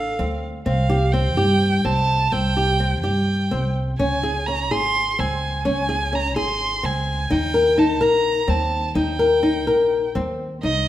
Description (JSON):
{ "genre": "contemporary instrumental, chamber music in an uneven meter", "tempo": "253 BPM (eighths)", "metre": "7/8", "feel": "straight", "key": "unclear", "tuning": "A4 = 441 Hz", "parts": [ { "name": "warm violin", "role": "melody", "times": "0.0-10.9 s", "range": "Eb5 to C6", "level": "-24 LUFS", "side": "right 3 dB", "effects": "none" }, { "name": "flamenco guitar", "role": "arpeggios", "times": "0.0-10.9 s", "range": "C4 to Bb4", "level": "-21 LUFS", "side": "left 2 dB", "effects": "none" }, { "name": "upright bass", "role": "bass", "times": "0.0-10.9 s", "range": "Ab1 to G2", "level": "-23 LUFS", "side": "equal", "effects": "none" } ], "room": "moderate recital hall reverb, RT60 1.7 s", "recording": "none", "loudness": "-18 LUFS", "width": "side -13 dB against mid", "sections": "0.0-10.6 A section", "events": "none", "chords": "0.0 Dm; 0.7 C5; 4.0 Db5; 7.3 Eb" }